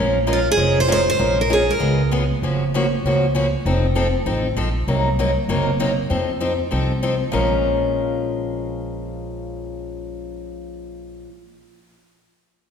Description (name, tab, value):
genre	acoustic string swing (jazz manouche)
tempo	196 BPM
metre	4/4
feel	swing 60% on 8ths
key	Bb minor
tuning	A4 = 439 Hz
part	picked steel-string acoustic guitar	accompaniment	0.0-11.3 s	Bb2 to Bb4	-21 LUFS	left 2 dB	none
part	upright bass	bass	0.0-11.2 s	F1 to F2	-23 LUFS	right 1 dB	none
part	picked steel-string acoustic guitar	melody	0.3-2.1 s	F4 to C5	-20 LUFS	right 2 dB	none
room	wet scoring stage reverb, RT60 1.8 s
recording	recorded in a church or concert hall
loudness	-17 LUFS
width	side -7 dB against mid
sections	0.0-2.4 A section; 2.4-7.3 B section; 7.3-9.8 C section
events	none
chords	0.0 Bbm9; 1.8 Db7; 2.4 Gbmaj7; 3.7 F7; 4.9 Cm7b5; 6.1 F7; 7.3 Bbm7